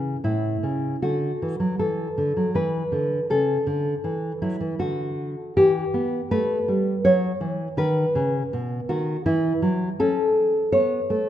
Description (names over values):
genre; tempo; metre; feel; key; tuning
classical, baroque-style dance for nylon-string guitar; 81 BPM; 3/4; rubato; D major; A4 = 436 Hz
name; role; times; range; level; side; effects
nylon-string guitar; solo; 0.0-11.3 s; A2 to C#5; -21 LUFS; equal; none
room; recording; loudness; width
moderate concert hall reverb, RT60 1.9 s; minimal, uncompressed stereo recording; -21 LUFS; side -11 dB against mid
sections
0.0-1.0 A section; 1.0-11.3 B section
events
none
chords
0.2 A; 1.0 D; 3.3 A/C#; 4.8 N.C.; 5.6 Em; 7.8 B; 9.2 Esus2; 10.0 A/C#